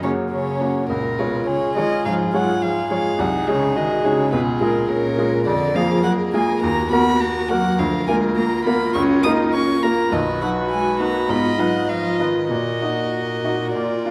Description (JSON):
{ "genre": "quick classical-period movement for piano quintet", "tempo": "103 BPM", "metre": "4/4", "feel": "rubato", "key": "Eb minor from 5.5 s", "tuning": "A4 = 439 Hz", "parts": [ { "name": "warm violin", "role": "melody", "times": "0.0-14.1 s", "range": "A#4 to Eb6", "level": "-28 LUFS", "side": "equal", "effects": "none" }, { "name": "dark cello", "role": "second line", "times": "0.0-14.1 s", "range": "A#2 to Eb4", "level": "-26 LUFS", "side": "equal", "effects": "none" }, { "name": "rich violin", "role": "second line", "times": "0.0-14.1 s", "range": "C#4 to Eb5", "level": "-30 LUFS", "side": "equal", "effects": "none" }, { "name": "bright baby grand piano", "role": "accompaniment", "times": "0.0-14.1 s", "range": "B1 to F5", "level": "-24 LUFS", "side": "equal", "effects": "none" }, { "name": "warm viola", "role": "accompaniment", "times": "0.0-14.1 s", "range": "C#3 to Ab4", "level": "-29 LUFS", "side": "equal", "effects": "none" } ], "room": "wet recital hall reverb, RT60 1.5 s", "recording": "none", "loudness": "-20 LUFS", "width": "mono", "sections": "0.0-14.1 A section", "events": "none", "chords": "0.0 F#; 0.9 C#; 3.2 G#7/B#; 4.3 C#; 5.5 Bb5/F; 6.6 Ebm; 7.8 Bb/D; 8.9 Bbm/Db; 10.1 B; 11.3 Fm7b5/Ab; 12.5 Ebm/Bb", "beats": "0.32 | 0.90 1.48 2.05 2.62 | 3.19 3.76 4.32 4.89 | 5.47 6.04 6.62 7.21 | 7.79 8.37 8.95 9.54 | 10.12 10.71 11.29 11.89 | 12.51 13.13 13.75" }